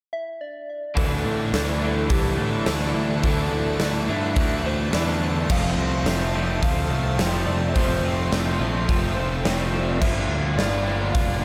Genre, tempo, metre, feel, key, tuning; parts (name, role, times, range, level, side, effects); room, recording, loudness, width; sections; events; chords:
rock, shoegaze and dream pop; 106 BPM; 4/4; straight; D minor; A4 = 440 Hz
soft struck synth lead; melody; 0.1-11.4 s; G4 to F5; -34 LUFS; equal; chorus, digital delay
crunchy overdriven guitar; riff; 0.9-11.4 s; F2 to D4; -33 LUFS; equal; lush chorus
overdriven electric guitar; riff; 0.9-11.4 s; F2 to D4; -34 LUFS; equal
icy glass pad; sustained chords; 1.7-11.4 s; E4 to A5; -36 LUFS; equal; chorus, built-in reverb
twelve-string electric guitar; arpeggios; 1.0-11.4 s; E3 to D4; -38 LUFS; equal
biting overdriven guitar; riff; 1.0-11.4 s; F2 to D4; -33 LUFS; equal; reverse reverb
fuzz picked electric bass; bass; 1.0-11.4 s; F1 to A2; -28 LUFS; equal; overdrive
huge arena drum kit; drums; 1.0-11.3 s; crash cymbal, hi-hat, kick drum, snare drum; -28 LUFS; equal
moderate church reverb, RT60 3.6 s; dreamy mix soaked in reverb; -23 LUFS; mono
1.0-11.4 A section
0.0 N.C.; 1.0 Dsus2; 5.5 F; 10.0 Gm7